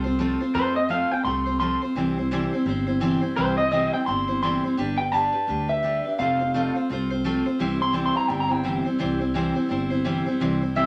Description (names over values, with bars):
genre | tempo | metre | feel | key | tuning
rockabilly | 170 BPM | 4/4 | swing 60% on 8ths | C major | A4 = 440 Hz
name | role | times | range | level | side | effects
electric guitar through a small old amp | melody | 0.0-10.9 s | C5 to C6 | -26 LUFS | equal | none
picked steel-string acoustic guitar | accompaniment | 0.0-10.9 s | C3 to C5 | -26 LUFS | equal | none
upright bass | bass | 0.0-10.9 s | F1 to F2 | -33 LUFS | equal | none
room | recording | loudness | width
moderate studio ambience, RT60 0.5 s | none | -24 LUFS | mono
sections
0.0-10.4 A section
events
clean electric guitar solo 0.0-10.4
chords
0.0 F; 2.0 C; 4.8 G; 6.2 F; 7.6 C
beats
0.19 | 0.55 0.90 1.25 1.60 | 1.96 2.31 2.66 3.01 | 3.37 3.72 4.07 4.42 | 4.78 5.13 5.48 5.83 | 6.18 6.54 6.89 7.24 | 7.59 7.95 8.30 8.65 | 9.00 9.35 9.71 10.06 | 10.41 10.76